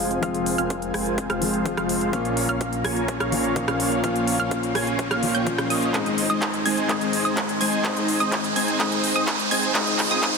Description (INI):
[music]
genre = EDM, festival progressive house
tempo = 126 BPM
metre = 4/4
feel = straight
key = unclear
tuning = A4 = 442 Hz
[part]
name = dark concert grand piano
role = accompaniment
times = 0.0-10.4 s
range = Ab2 to F4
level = -26 LUFS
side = left 4 dB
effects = sidechain pumping, digital delay
[part]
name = lush unison pad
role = sustained chords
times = 0.0-10.4 s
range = Eb4 to C6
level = -31 LUFS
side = right 1 dB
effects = chorus, sidechain pumping
[part]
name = wide unison pluck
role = arpeggios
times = 0.0-10.4 s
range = Eb6 to Ab6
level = -29 LUFS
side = right 2 dB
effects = cassette tape, sidechain pumping, digital delay
[part]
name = dense compressed supersaw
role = riff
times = 0.0-10.4 s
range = Ab3 to Ab5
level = -26 LUFS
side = right 2 dB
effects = vintage 12-bit sampler grit, sidechain pumping, low-pass filter, digital delay
[part]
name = wide detuned saw bass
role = bass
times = 0.0-10.4 s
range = F1 to Ab2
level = -38 LUFS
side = right 1 dB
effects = chorus, sidechain pumping
[part]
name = riser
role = sound effects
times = 0.8-10.4 s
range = none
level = -31 LUFS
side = right 3 dB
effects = none
[part]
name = big-room dance drum kit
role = drums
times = 0.1-10.4 s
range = handclaps, hi-hat, rim click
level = -27 LUFS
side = right 1 dB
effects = overdrive
[part]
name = electronic kick drum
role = drums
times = 0.2-10.3 s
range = none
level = -30 LUFS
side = right 1 dB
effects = overdrive, high-pass filter on kick
[sound]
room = wet scoring stage reverb, RT60 1.9 s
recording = dense, heavily limited modern master, high-pass filter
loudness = -20 LUFS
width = side -4 dB against mid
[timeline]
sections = 0.0-10.4 A section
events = build-up 0.0-10.4; filter sweep on supersaw synth 0.0-10.4; filter sweep on synth pluck 0.0-10.4; filter sweep 0.0-10.4; riser 0.8-10.4; drum fill 5.9-10.4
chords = 0.0 Fm; 2.1 Bbm; 5.9 Ab; 9.8 Db